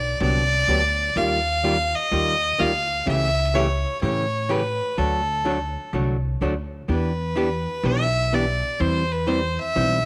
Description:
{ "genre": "country, western swing", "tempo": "126 BPM", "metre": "4/4", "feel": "swing 66% on 8ths", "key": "G major", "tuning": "A4 = 437 Hz", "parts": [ { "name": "clear fiddle", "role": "melody", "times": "0.0-10.1 s", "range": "A4 to F5", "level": "-25 LUFS", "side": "equal", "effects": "none" }, { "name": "upright bass", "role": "bass", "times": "0.0-10.1 s", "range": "B1 to A2", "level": "-28 LUFS", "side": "equal", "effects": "none" }, { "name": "archtop guitar, miked and amplified", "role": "accompaniment", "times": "0.2-10.0 s", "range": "C#3 to C5", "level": "-28 LUFS", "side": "equal", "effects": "none" } ], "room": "light reverb, small room ambience", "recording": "none", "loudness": "-22 LUFS", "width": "mono", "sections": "0.0-10.1 A section", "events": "none", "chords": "0.0 Gmaj7; 1.2 Ebadd9; 3.1 A7/C#; 5.0 D; 6.9 Em7; 8.8 C/E" }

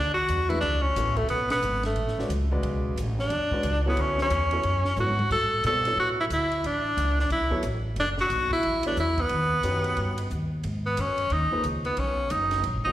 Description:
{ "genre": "modal jazz", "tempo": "180 BPM", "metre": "4/4", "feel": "swing 63% on 8ths", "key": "B dorian", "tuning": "A4 = 440 Hz", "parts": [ { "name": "bright tenor saxophone", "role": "melody", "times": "0.0-12.9 s", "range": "A3 to A4", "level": "-25 LUFS", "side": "equal", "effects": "slapback echo" }, { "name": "upright bass", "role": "bass", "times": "0.0-12.9 s", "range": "F#1 to B2", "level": "-28 LUFS", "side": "equal", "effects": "none" }, { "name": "compact cocktail drum kit", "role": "drums", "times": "0.3-12.7 s", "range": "crash cymbal, hi-hat, kick drum, ride cymbal, snare drum, toms", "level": "-38 LUFS", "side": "equal", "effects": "none" }, { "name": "warm concert grand piano", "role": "accompaniment", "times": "0.5-12.9 s", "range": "C#3 to D5", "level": "-33 LUFS", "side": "left 1 dB", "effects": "slapback echo" } ], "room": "light reverb, studio reverb", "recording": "live gig heard through the venue's PA, recital hall reverb", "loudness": "-23 LUFS", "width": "side -13 dB against mid", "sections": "0.0-10.6 A section; 10.6-12.9 B section", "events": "band accent 1.5; drum fill 5.0-5.3; tenor saxophone solo 10.6-12.9", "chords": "0.0 Bm11; 5.3 Dadd9; 9.3 D#7alt; 10.6 G#m11" }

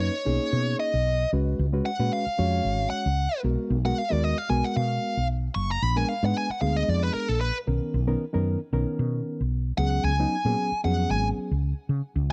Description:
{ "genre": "jazz", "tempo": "114 BPM", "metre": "4/4", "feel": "swing 54% on 16ths", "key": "unclear", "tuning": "A4 = 440 Hz", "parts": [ { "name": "bluesy overdriven lead guitar", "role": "melody", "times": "0.0-11.3 s", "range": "A4 to Db6", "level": "-30 LUFS", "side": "equal", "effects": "distortion" }, { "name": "reed electric piano", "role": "accompaniment", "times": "0.0-12.3 s", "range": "D#3 to Db5", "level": "-31 LUFS", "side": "equal", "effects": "none" }, { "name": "woody fretless electric bass", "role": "bass", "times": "0.0-12.3 s", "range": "Gb1 to Db3", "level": "-28 LUFS", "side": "equal", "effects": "none" } ], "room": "digital ambience", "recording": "dry, close 1970s-style studio recording", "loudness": "-26 LUFS", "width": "mono", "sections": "0.0-12.3 A section", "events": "lead electric guitar solo 0.0-12.3", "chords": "0.0 Bmaj9; 1.3 Db7sus4; 3.4 Abm9/Cb; 5.8 Bb7b9; 7.7 Bmaj9; 9.8 Db7sus4" }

